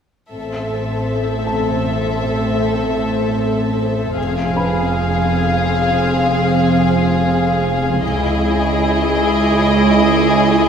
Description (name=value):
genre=cinematic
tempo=free time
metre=none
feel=none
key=A harmonic minor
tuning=A4 = 439 Hz
part: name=warm studio violin section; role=melody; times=0.3-10.7 s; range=D#5 to F5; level=-23 LUFS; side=left 3 dB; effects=none
part: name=warm studio violin section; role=second line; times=0.3-10.7 s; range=Ab4 to A4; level=-21 LUFS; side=left 2 dB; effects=none
part: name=dark studio viola section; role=accompaniment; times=0.3-10.7 s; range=C4 to E4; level=-22 LUFS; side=left 2 dB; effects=none
part: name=glass harmonica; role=sustained chords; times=0.3-10.7 s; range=C4 to F5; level=-24 LUFS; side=equal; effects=none
part: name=rich studio double bass section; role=bass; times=0.3-10.7 s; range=F1 to C#2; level=-20 LUFS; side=right 3 dB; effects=none
part: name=warm studio cello section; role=bass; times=0.3-10.7 s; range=C#2 to A2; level=-22 LUFS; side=right 2 dB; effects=none
part: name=felt-muted upright piano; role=texture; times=1.5-8.0 s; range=B4 to B5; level=-31 LUFS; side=left 3 dB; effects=none
part: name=warm studio violin section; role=texture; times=8.0-10.7 s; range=C#5 to D7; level=-29 LUFS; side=left 5 dB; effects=none
room=wet concert hall reverb, RT60 2.0 s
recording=minimal, uncompressed stereo recording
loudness=-14 LUFS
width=side -7 dB against mid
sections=0.3-10.7 A section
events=none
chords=0.3 Am; 4.2 Fm; 8.0 C#madd9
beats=free time